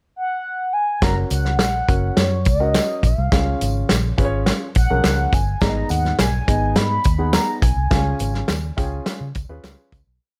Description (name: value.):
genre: uptempo 1960s-style soul.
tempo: 104 BPM.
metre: 4/4.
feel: straight.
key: Db mixolydian.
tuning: A4 = 439 Hz.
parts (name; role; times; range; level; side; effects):
mellow horn-like synth lead; melody; 0.2-8.8 s; Db5 to Cb6; -26 LUFS; equal; chorus.
warm grand piano; accompaniment; 1.0-10.0 s; Ab2 to Ab5; -29 LUFS; equal; none.
vintage muted fingered electric bass; bass; 1.0-10.2 s; Gb1 to Db3; -24 LUFS; equal; none.
warm soul drum kit; drums; 1.0-10.1 s; hi-hat, kick drum, snare drum; -22 LUFS; equal; none.
tambourine and handclaps; percussion; 1.0-10.1 s; none; -37 LUFS; equal; none.
room: little or no reverb.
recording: none.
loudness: -19 LUFS.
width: mono.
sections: 0.0-1.0 pickup bar; 1.0-10.2 A section.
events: fade-out 7.9-10.2.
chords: 0.0 N.C.; 1.0 Gb; 3.3 Db; 5.6 Abm; 7.9 Db.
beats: 0.45 | 1.02 1.60 2.17 2.75 | 3.32 3.89 4.47 5.04 | 5.61 6.19 6.76 7.34 | 7.91 8.48 9.06 9.63.